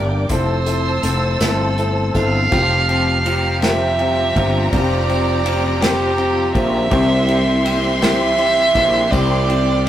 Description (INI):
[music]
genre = six-eight pop ballad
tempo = 54 BPM (dotted quarters)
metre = 6/8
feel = straight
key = F major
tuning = A4 = 440 Hz
[part]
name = dark violin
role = melody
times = 0.0-9.9 s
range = G4 to F5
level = -19 LUFS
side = right 3 dB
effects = none
[part]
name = dark baby grand piano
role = accompaniment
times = 0.0-9.9 s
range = Bb3 to A4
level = -23 LUFS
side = left 2 dB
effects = none
[part]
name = warm studio string section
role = sustained chords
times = 0.0-9.9 s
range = E3 to E6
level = -26 LUFS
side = equal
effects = none
[part]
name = direct-recorded clean electric guitar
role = arpeggios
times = 0.0-9.9 s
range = C3 to Bb4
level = -27 LUFS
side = left 4 dB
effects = none
[part]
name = fretless electric bass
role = bass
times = 0.0-9.9 s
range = F1 to C2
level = -20 LUFS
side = equal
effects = none
[part]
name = unplugged drum kit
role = drums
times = 0.3-9.9 s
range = crash cymbal, hi-hat, kick drum, ride cymbal, snare drum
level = -24 LUFS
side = equal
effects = none
[part]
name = warm studio violin section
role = second line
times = 2.5-9.9 s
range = A5 to C6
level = -26 LUFS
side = left 1 dB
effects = none
[sound]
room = wet stone room reverb, RT60 1.0 s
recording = rough rehearsal-room recording, tube saturation, faint mains hum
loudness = -14 LUFS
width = side -11 dB against mid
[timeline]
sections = 0.0-2.5 A section; 2.5-9.9 B section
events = none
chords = 0.3 Am/F; 2.5 Fsus2; 6.9 C